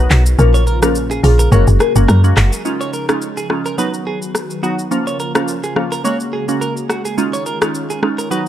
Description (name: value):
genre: afrobeats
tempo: 106 BPM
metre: 4/4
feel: swing 55% on 16ths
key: unclear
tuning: A4 = 442 Hz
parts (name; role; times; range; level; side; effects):
- folk marimba with medium mallets; melody; 0.0-1.9 s; Ab4 to B4; -20 LUFS; left 4 dB; tape echo
- glassy wavetable pluck; accompaniment; 0.0-8.5 s; F3 to F#4; -20 LUFS; right 2 dB; chorus
- warm analog pad; sustained chords; 0.0-8.5 s; Bb2 to B4; -26 LUFS; left 1 dB; chorus
- woody log drum bass; bass; 0.0-2.5 s; Gb1 to Gb2; -11 LUFS; equal; none
- direct-recorded clean electric guitar; riff; 0.1-8.4 s; F#4 to Db5; -24 LUFS; right 4 dB; lush chorus, tape echo
- afro-pop drum kit; drums; 0.1-8.5 s; handclaps, hi-hat, rim click, shaker; -21 LUFS; left 1 dB; none
room: digital ambience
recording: dark, warm production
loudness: -13 LUFS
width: side -11 dB against mid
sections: 0.0-2.7 A section; 2.7-8.5 B section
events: kick muted 0.4-2.7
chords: 0.4 Bbm; 1.5 Gbadd9; 2.7 Dbadd9; 3.8 B; 4.9 Bbm; 6.0 Gbadd9; 7.2 Dbadd9